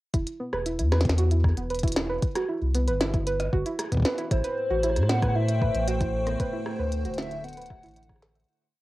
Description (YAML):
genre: IDM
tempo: 115 BPM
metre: 4/4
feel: straight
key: E minor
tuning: A4 = 443 Hz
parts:
  - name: soft round pluck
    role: arpeggios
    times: 0.1-8.4 s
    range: B3 to E5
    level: -31 LUFS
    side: right 2 dB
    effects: chorus, cassette tape, analog delay
  - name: warm sub bass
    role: bass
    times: 0.1-8.4 s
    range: D1 to A2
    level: -26 LUFS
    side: equal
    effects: tube saturation
  - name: electronic kick drum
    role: drums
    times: 0.1-8.2 s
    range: none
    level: -26 LUFS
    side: equal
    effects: cassette tape
  - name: glitchy drum kit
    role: drums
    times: 0.1-8.6 s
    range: hi-hat, rim click, snare drum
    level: -31 LUFS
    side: equal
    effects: cassette tape
  - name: warbly nostalgic lead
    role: melody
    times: 4.3-8.2 s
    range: C5 to F#5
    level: -30 LUFS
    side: left 1 dB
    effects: wide subtle chorus, tape echo
  - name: icy glass pad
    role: sustained chords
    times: 4.6-8.5 s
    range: A2 to G5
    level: -34 LUFS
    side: equal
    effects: chorus, built-in reverb, cassette tape
room: moderate booth ambience, RT60 0.2 s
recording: home recording on cassette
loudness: -23 LUFS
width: side -18 dB against mid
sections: 0.1-8.5 groove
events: fade-out 5.7-8.5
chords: 0.1 E5; 2.2 Cmaj7; 4.3 Am7; 6.4 D7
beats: | 0.14 0.66 1.18 1.70 | 2.22 2.75 3.27 3.79 | 4.31 4.83 5.36 5.88 | 6.40 6.92 7.44 7.96